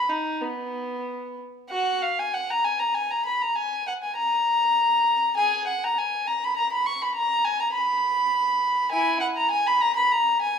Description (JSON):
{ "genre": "classical, baroque-style suite movement for unaccompanied violin", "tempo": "100 BPM", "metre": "3/4", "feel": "rubato", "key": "unclear", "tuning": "A4 = 440 Hz", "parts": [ { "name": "dark violin", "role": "solo", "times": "0.0-10.6 s", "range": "B3 to C#6", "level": "-22 LUFS", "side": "equal", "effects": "none" } ], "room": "moderate recital hall reverb, RT60 1.5 s", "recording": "minimal, uncompressed stereo recording", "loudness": "-21 LUFS", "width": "side -7 dB against mid", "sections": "0.0-1.7 A section; 1.7-10.6 A section", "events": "none", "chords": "none" }